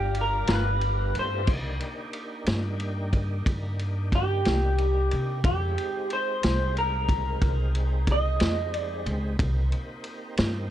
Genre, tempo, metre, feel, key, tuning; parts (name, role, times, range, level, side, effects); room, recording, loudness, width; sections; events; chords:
slow blues; 61 BPM (dotted quarters); 12/8; straight; C minor; A4 = 440 Hz
electric guitar through a small old amp; melody; 0.0-9.1 s; G4 to Eb5; -28 LUFS; equal; lush chorus
tonewheel organ; sustained chords; 0.0-10.7 s; G3 to A#5; -38 LUFS; equal; chorus vibrato, slow rotary speaker
warm saxophone section; sustained chords; 0.0-1.5 s; G4 to F5; -43 LUFS; equal
upright bass; bass; 0.0-10.7 s; G1 to C3; -27 LUFS; equal
vintage drum kit; drums; 0.1-10.5 s; crash cymbal, kick drum, ride cymbal, snare drum; -28 LUFS; equal
electric guitar through a small old amp; accompaniment; 0.5-0.7 s; G3 to A#4; -32 LUFS; left 6 dB; tremolo
little or no reverb; dark, warm production; -24 LUFS; side -12 dB against mid
0.0-1.5 A section; 1.5-10.7 B section
clean electric guitar solo 0.0-1.5
0.0 G7#9; 1.5 Cm9; 5.5 Fm9; 9.4 Cm7